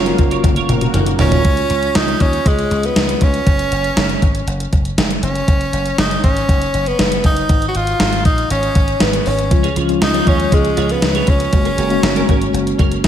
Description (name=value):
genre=1980s-style pop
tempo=119 BPM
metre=4/4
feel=straight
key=Db mixolydian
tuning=A4 = 440 Hz
part: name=bright tenor saxophone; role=melody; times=0.0-12.8 s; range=Ab3 to Gb4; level=-19 LUFS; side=equal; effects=slapback echo
part: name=folk marimba with medium mallets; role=second line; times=0.0-0.1, 8.5-12.8 s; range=Ab4 to Eb5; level=-28 LUFS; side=left 1 dB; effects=none
part: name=mellow tine electric piano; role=accompaniment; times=0.0-3.5, 9.5-13.1 s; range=F3 to Gb4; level=-20 LUFS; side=left 2 dB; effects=medium stereo tremolo, slapback echo
part: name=sweeping resonant pad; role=sustained chords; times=0.0-1.4 s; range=Db3 to F5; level=-29 LUFS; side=right 1 dB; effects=chorus
part: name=twelve-string electric guitar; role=riff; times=0.0-1.5, 9.5-13.1 s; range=Db4 to Db5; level=-25 LUFS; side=right 6 dB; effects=ensemble chorus, ping-pong delay
part: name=dry thumbed slap bass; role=bass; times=0.0-13.1 s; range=Gb1 to Eb2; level=-21 LUFS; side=equal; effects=none
part: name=mellow synth brass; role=stabs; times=0.1-1.2 s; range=Bb3 to Bb4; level=-26 LUFS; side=equal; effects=chorus, slapback echo
part: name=gated 80s digital drum machine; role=drums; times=0.1-13.1 s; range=hi-hat, kick drum, snare drum, toms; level=-16 LUFS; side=equal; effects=gated reverb, gated reverb snare
room=moderate lush hall reverb, RT60 2.4 s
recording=big arena sound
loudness=-13 LUFS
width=side -10 dB against mid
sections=0.0-1.4 A section; 1.4-13.1 B section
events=drum fill 0.4-1.4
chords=0.0 Gbmaj7; 1.4 Db; 3.5 Gb5; 7.5 N.C.; 9.5 Db; 11.5 Gbadd9